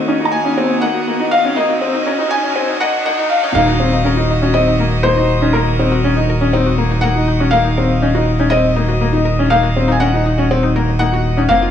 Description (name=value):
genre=piano and strings electronica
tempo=121 BPM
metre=4/4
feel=straight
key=Eb dorian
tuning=A4 = 440 Hz
part: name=felt-muted upright piano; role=melody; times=0.0-11.7 s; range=Bb4 to Bb5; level=-18 LUFS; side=left 1 dB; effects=tape echo
part: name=rich string quartet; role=sustained chords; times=0.0-11.7 s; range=Eb3 to Eb5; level=-21 LUFS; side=right 1 dB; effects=none
part: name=riser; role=sound effects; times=0.0-3.6 s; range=none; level=-24 LUFS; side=right 1 dB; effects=none
part: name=analog pluck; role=arpeggios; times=0.1-11.7 s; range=C4 to Eb5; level=-23 LUFS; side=left 2 dB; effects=chorus, tape echo
part: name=warm upright piano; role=riff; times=0.1-11.6 s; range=Bb3 to Eb4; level=-18 LUFS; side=left 2 dB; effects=tape echo
part: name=warm sub bass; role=bass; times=3.5-11.7 s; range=Eb1 to F1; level=-17 LUFS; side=equal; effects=none
room=moderate scoring stage reverb, RT60 1.6 s, studio ambience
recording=high-pass filter, small room ambience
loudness=-12 LUFS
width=side -9 dB against mid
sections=0.0-3.6 A section; 3.6-11.7 B section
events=build-up 0.0-3.6; riser 0.0-3.6; filter sweep on synth arpeggio sound 0.0-3.6; filter sweep 0.0-3.6; drop 3.6-11.7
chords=0.0 Ebm